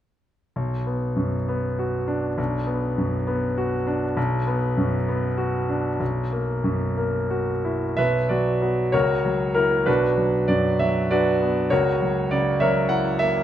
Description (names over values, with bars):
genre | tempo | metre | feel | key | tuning
classical, romantic character piece for solo piano | 57-68 BPM (dotted quarters) | 6/8 | rubato | B minor | A4 = 440 Hz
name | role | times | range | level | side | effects
bright concert grand piano | solo | 0.6-13.4 s | B1 to F#5 | -20 LUFS | equal | none
room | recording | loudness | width
moderate recital hall reverb, RT60 1.6 s | none | -20 LUFS | side -11 dB against mid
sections
0.6-8.0 A section; 8.0-13.4 B section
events
none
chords
0.6 Bm; 6.0 F#7/B; 8.0 Bm; 8.9 F#7/C#; 9.9 Bm; 11.7 F#7/C#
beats
| 0.55 1.48 | 2.38 3.27 | 4.17 5.09 | 6.00 6.96 | 7.97 8.93 | 9.87 10.79 | 11.70 12.60